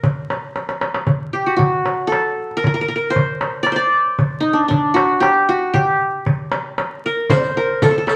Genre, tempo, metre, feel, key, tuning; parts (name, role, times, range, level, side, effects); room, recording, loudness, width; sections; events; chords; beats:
Arabic maqam ensemble; 116 BPM; 3/4; straight; A4 = 440 Hz
qanun; melody; 0.0-8.2 s; D4 to D5; -19 LUFS; equal
darbuka; percussion; 0.0-8.2 s; -22 LUFS; equal
mellow hollow low ney; second line; 7.1-8.2 s; A4 to D5; -23 LUFS; equal
riq; percussion; 7.3-8.2 s; -27 LUFS; equal
wet studio reverb, RT60 0.9 s; vinyl crackle; -18 LUFS; mono
0.0-7.3 A section
drum fill 0.6-1.1
0.03 0.55 | 1.07 1.59 2.11 | 2.63 3.15 3.67 | 4.19 4.71 5.22 | 5.74 6.26 6.78 | 7.30 7.82